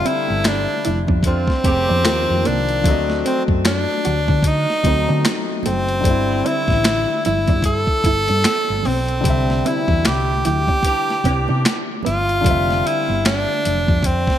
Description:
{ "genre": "R&B, neo-soul", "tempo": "75 BPM", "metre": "4/4", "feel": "swing 58% on 16ths", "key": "C major", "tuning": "A4 = 440 Hz", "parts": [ { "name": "edgy tenor saxophone", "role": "melody", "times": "0.0-14.4 s", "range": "C4 to A4", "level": "-20 LUFS", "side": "equal", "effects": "none" }, { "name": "warm concert grand piano", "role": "accompaniment", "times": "0.0-14.4 s", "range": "C3 to E5", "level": "-25 LUFS", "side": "left 4 dB", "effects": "none" }, { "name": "warm horn section", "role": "stabs", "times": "0.0-2.2, 9.6-11.8 s", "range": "B2 to G4", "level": "-29 LUFS", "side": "right 1 dB", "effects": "none" }, { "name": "congas", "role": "percussion", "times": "0.0-14.3 s", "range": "none", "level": "-33 LUFS", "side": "right 10 dB", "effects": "none" }, { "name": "hollow-body jazz guitar", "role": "second line", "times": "0.1-12.2 s", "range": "A3 to F#4", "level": "-29 LUFS", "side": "right 4 dB", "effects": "wide subtle chorus" }, { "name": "boom bap sampler-style drum kit", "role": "drums", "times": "0.1-14.4 s", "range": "finger snaps, hi-hat, kick drum, snare drum", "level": "-21 LUFS", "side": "equal", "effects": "gated reverb" }, { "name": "hollow-body short-scale fingered electric bass", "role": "bass", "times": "0.3-14.2 s", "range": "F1 to D3", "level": "-21 LUFS", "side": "equal", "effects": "none" } ], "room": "moderate plate reverb, RT60 2.8 s", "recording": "bright 1980s-style digital production", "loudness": "-16 LUFS", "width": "side -10 dB against mid", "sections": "0.0-14.4 A section", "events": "none", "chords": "0.0 F69; 2.0 Eb9; 2.8 D7b9; 6.0 Gsus24; 9.2 Cmaj9; 12.4 Fsus2", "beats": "0.44 1.24 2.04 | 2.84 3.64 4.44 5.24 | 6.04 6.84 7.64 8.44 | 9.24 10.04 10.84 11.64 | 12.44 13.24 14.04" }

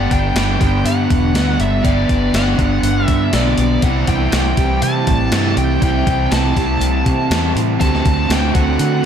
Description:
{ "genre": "rock, shoegaze and dream pop", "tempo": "121 BPM", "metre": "4/4", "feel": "straight", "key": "G major", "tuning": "A4 = 438 Hz", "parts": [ { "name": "bluesy overdriven lead guitar", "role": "melody", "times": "0.0-9.1 s", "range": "D5 to A5", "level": "-22 LUFS", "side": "equal", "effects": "distortion, analog delay" }, { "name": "picked twelve-string acoustic guitar", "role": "arpeggios", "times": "0.0-9.1 s", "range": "E3 to G4", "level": "-26 LUFS", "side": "right 7 dB", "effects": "lush chorus, analog delay" }, { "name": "crunchy overdriven guitar", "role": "riff", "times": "0.0-9.1 s", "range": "G2 to F#4", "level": "-20 LUFS", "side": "right 7 dB", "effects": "reverse reverb" }, { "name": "overdriven electric guitar", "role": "riff", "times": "0.0-9.1 s", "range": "C3 to G4", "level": "-22 LUFS", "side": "left 6 dB", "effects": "wide subtle chorus" }, { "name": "vintage muted fingered electric bass", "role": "bass", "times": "0.0-9.0 s", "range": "E1 to D3", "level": "-18 LUFS", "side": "left 1 dB", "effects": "none" }, { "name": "gated 80s digital drum machine", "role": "drums", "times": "0.1-8.9 s", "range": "hi-hat, kick drum, snare drum", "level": "-20 LUFS", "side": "equal", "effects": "gated reverb, gated reverb snare" } ], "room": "wet plate reverb, RT60 2.6 s", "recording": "dreamy mix soaked in reverb", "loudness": "-13 LUFS", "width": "side -8 dB against mid", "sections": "0.0-9.1 A section", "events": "none", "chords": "0.0 Gmaj7; 3.8 C6; 7.8 D7", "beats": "0.35 0.85 1.34 | 1.84 2.34 2.83 3.33 | 3.83 4.33 4.82 5.32 | 5.82 6.31 6.81 7.30 | 7.80 8.30 8.79" }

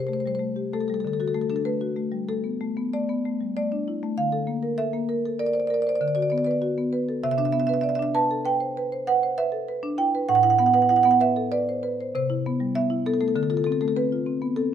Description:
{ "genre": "classical, contemporary piece for solo marimba", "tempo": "98 BPM", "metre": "5/4", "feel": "rubato", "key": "C lydian", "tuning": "A4 = 440 Hz", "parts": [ { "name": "marimba with medium mallets", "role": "solo", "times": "0.0-14.7 s", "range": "A2 to A5", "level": "-22 LUFS", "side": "right 1 dB", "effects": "none" } ], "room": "light reverb", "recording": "close, detailed microphones", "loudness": "-22 LUFS", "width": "side -9 dB against mid", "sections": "0.0-14.7 A section", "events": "none", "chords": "0.0 C5; 1.0 D; 4.2 Bbmaj7/D; 6.0 D6; 7.2 Cmaj9; 10.3 Amadd9; 12.1 Cmaj7; 13.4 Dm7", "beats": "0.41 | 1.04 1.66 2.27 2.93 3.57 | 4.19 4.80 5.41 6.02 6.64 | 7.24 7.85 8.46 9.08 9.69 | 10.29 10.91 11.52 12.14 12.75 | 13.36 13.97 14.59" }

